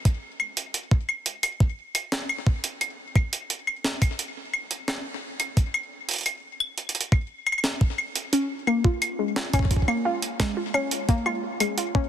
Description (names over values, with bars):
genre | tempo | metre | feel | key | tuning
IDM | 87 BPM | 4/4 | straight | Bb minor | A4 = 440 Hz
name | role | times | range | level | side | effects
electronic kick drum | drums | 0.1-12.1 s | none | -21 LUFS | equal | none
jungle sampler-style drum kit | drums | 0.1-11.9 s | claves, hi-hat, snare drum | -27 LUFS | equal | ping-pong delay
warbly dusty pluck | arpeggios | 8.3-12.1 s | Ab3 to F4 | -25 LUFS | left 1 dB | chorus, tape echo
room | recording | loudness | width
light reverb | dense, heavily limited modern master | -23 LUFS | side -10 dB against mid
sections
0.0-12.1 A section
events
none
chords
none